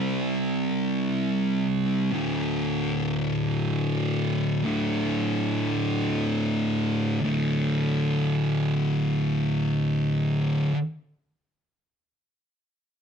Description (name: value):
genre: metal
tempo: free time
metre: none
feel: none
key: unclear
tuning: A4 = 440 Hz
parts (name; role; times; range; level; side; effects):
- thick fuzz guitar; solo; 0.0-10.8 s; D2 to C4; -23 LUFS; equal; distortion
room: light reverb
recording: none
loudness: -23 LUFS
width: side -7 dB against mid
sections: 0.0-7.2 A section; 7.2-9.8 B section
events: none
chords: 0.0 C5; 2.1 D5